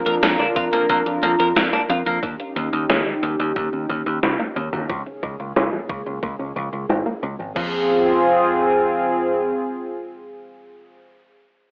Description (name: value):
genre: synthwave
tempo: 90 BPM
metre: 4/4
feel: straight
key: F minor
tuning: A4 = 438 Hz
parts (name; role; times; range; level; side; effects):
- warm analog pad; sustained chords; 0.0-11.0 s; Bb3 to Bb4; -21 LUFS; equal; chorus, sidechain pumping, cassette tape
- analog pluck; arpeggios; 0.1-7.9 s; D3 to D4; -29 LUFS; equal; chorus, cassette tape, tape echo
- twelve-string electric guitar; riff; 0.1-2.2 s; Bb3 to Bb4; -22 LUFS; equal; wide subtle chorus, cassette tape, tape echo
- picked electric bass; bass; 0.1-9.5 s; Ab1 to F2; -25 LUFS; equal; sidechain pumping
- gated 80s digital drum machine; drums; 0.1-7.7 s; crash cymbal, hi-hat, snare drum, toms; -23 LUFS; equal; gated reverb, gated reverb snare, low-pass filter on hats, cassette tape, low-pass filter on snare, low-pass filter on cymbals, low-pass filter on toms, low-pass filter on room
- electronic kick drum; drums; 0.6-7.7 s; none; -32 LUFS; equal; cassette tape
room: wet small room reverb, RT60 0.5 s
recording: home recording on cassette, telephone sound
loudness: -18 LUFS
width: side -34 dB against mid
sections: 0.0-7.6 A section; 7.6-10.2 B section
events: filter sweep on drum 0.0-7.6; filter sweep on synth arpeggio sound 0.0-7.6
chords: 0.0 Bb/F; 2.2 Eb7; 4.9 Bbm7/Db; 7.6 Fm